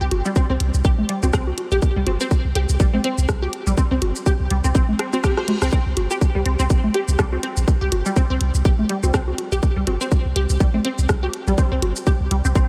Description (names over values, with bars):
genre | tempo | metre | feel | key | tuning
minimal techno | 123 BPM | 4/4 | swing 56% on 16ths | unclear | A4 = 440 Hz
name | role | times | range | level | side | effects
resonant blip pluck | riff | 0.0-12.6 s | G3 to C5 | -27 LUFS | equal | phaser, ensemble chorus, sidechain pumping, tape echo
punchy sub bass | bass | 0.0-12.7 s | G1 to C2 | -23 LUFS | equal | sidechain pumping
garage drum kit | drums | 0.1-12.7 s | hi-hat, rim click, shaker | -31 LUFS | equal | small room reverb
congas | percussion | 0.1-11.9 s | none | -29 LUFS | equal | small room reverb, diffuse ambient delay
electronic kick drum | drums | 0.4-12.7 s | none | -20 LUFS | equal | small room reverb
reverse cymbal | sound effects | 5.0-5.7 s | none | -43 LUFS | equal | none
room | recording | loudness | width
light reverb | none | -20 LUFS | mono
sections
0.0-12.7 A section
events
reverse cymbal 5.0-5.7; drum fill 5.0-5.7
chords
0.0 C5